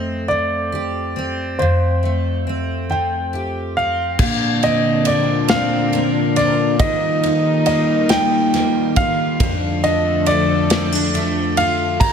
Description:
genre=six-eight pop ballad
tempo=46 BPM (dotted quarters)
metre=6/8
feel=straight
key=Bb major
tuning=A4 = 441 Hz
part: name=warm concert grand piano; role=melody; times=0.0-12.1 s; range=C5 to Bb5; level=-20 LUFS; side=right 1 dB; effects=none
part: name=picked steel-string acoustic guitar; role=accompaniment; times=0.0-12.1 s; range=F2 to G4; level=-20 LUFS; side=equal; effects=double-tracked left and right
part: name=dark French horn section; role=second line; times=4.2-12.0 s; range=D4 to Eb4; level=-24 LUFS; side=left 5 dB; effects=none
part: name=sweeping resonant pad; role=sustained chords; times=4.5-12.0 s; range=F2 to Bb4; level=-23 LUFS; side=right 1 dB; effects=chorus
part: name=modern studio drum kit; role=drums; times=4.2-12.1 s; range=crash cymbal, kick drum, ride cymbal, snare drum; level=-22 LUFS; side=equal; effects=none
room=light reverb, small room reverb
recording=none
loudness=-15 LUFS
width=side -7 dB against mid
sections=0.0-4.2 A section; 4.2-12.1 B section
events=none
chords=0.0 Fadd9; 4.2 Bbadd9; 6.8 Ebadd9; 9.4 Dm/F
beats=0.29 | 1.59 2.89 | 4.19 5.50 | 6.80 8.10 | 9.40 10.71 | 12.01

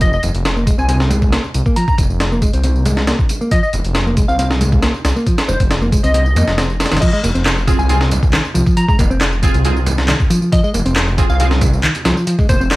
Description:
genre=breakbeat, breaks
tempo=137 BPM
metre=4/4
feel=straight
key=F minor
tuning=A4 = 440 Hz
part: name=plucky unison lead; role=melody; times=0.0-12.6 s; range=C5 to Bb5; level=-22 LUFS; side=left 1 dB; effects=AM radio sound, dub echo
part: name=picked electric bass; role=riff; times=0.0-12.7 s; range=Eb3 to C4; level=-19 LUFS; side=equal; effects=tube saturation, vintage 12-bit sampler grit
part: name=detuned saw bass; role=bass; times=0.0-12.8 s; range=F1 to F2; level=-16 LUFS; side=equal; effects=tube saturation
part: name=breakbeat sampler-style drum kit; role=drums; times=0.0-12.8 s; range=crash cymbal, hi-hat, kick drum, snare drum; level=-16 LUFS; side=equal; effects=none
part: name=electronic tambourine and handclaps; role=drums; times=0.0-12.8 s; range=none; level=-25 LUFS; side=right 1 dB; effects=overdrive
part: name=congas and bongos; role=percussion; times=0.2-12.6 s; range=none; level=-26 LUFS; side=right 2 dB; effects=none
part: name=orchestra-hit-like synth stab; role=stabs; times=7.7-11.5 s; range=C4 to Ab4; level=-23 LUFS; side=right 4 dB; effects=built-in reverb, dub echo
room=little or no reverb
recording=vinyl crackle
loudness=-12 LUFS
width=side -19 dB against mid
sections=0.0-7.0 A section; 7.0-12.8 B section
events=drop 7.0-12.8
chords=0.0 Fm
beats=| 0.01 0.45 0.89 1.33 | 1.76 2.20 2.64 3.08 | 3.52 3.96 4.39 4.83 | 5.27 5.71 6.14 6.58 | 7.02 7.46 7.90 8.33 | 8.77 9.21 9.65 10.09 | 10.52 10.96 11.40 11.84 | 12.28 12.71

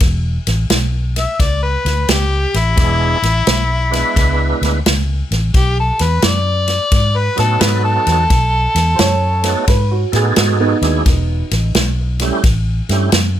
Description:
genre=electric blues shuffle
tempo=87 BPM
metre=4/4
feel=swing 66% on 8ths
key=E mixolydian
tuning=A4 = 438 Hz
part: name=vintage muted fingered electric bass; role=bass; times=0.0-13.4 s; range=E1 to A2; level=-16 LUFS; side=equal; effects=none
part: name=natural country drum kit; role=drums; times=0.0-13.3 s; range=kick drum, ride cymbal, snare drum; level=-17 LUFS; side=equal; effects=none
part: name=clear harmonica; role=melody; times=1.2-9.9 s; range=E4 to E5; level=-17 LUFS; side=left 2 dB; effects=overdrive, plate reverb
part: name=tonewheel organ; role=accompaniment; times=2.8-13.1 s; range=F#3 to B4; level=-19 LUFS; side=right 5 dB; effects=slow rotary speaker, overdrive, chorus vibrato
part: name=warm upright piano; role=second line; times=9.0-11.0 s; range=B3 to C#5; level=-20 LUFS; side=right 4 dB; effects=tape echo
room=light reverb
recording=faint mains hum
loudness=-12 LUFS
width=side -11 dB against mid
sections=0.0-13.4 A section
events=none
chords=0.0 E7; 5.5 B7; 11.1 E5; 12.4 A7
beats=| 0.01 0.70 1.40 2.09 | 2.78 3.47 4.16 4.85 | 5.54 6.23 6.92 7.61 | 8.30 8.99 9.68 10.37 | 11.06 11.75 12.44 13.13

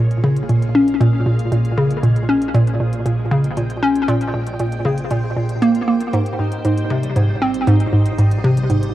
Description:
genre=ambient, sequencer-driven space music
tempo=117 BPM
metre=4/4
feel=straight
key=Bb dorian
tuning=A4 = 440 Hz
part: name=string machine, full ensemble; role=sustained chords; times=0.0-8.9 s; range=Bb3 to G5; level=-30 LUFS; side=equal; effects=ensemble chorus, plate reverb
part: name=concert harp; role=arpeggios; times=0.0-8.9 s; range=G3 to Ab4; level=-32 LUFS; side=moving between left 6 dB and equal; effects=auto-pan, tape echo, plate reverb
part: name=hollow square pluck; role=riff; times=0.0-8.8 s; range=Ab2 to Db4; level=-15 LUFS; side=equal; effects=chorus, tape echo
part: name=warm sub bass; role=bass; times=0.0-8.9 s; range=Ab1 to Bb1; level=-40 LUFS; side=equal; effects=none
part: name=electronic hi-hat and percussion blips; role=percussion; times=0.1-8.9 s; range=none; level=-41 LUFS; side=equal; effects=overdrive, cassette tape, tape echo
room=moderate small room reverb, RT60 0.5 s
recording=home recording on cassette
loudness=-15 LUFS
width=side -14 dB against mid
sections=0.0-8.9 A section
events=fade-in on harp 0.0-8.9; fade-in on string machine 0.0-8.9; fade-in on drum 0.0-8.9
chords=0.0 Bbm7; 6.1 Abmaj7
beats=0.49 1.01 1.52 | 2.03 2.55 3.06 3.57 | 4.08 4.60 5.11 5.62 | 6.14 6.65 7.16 7.67 | 8.19 8.70

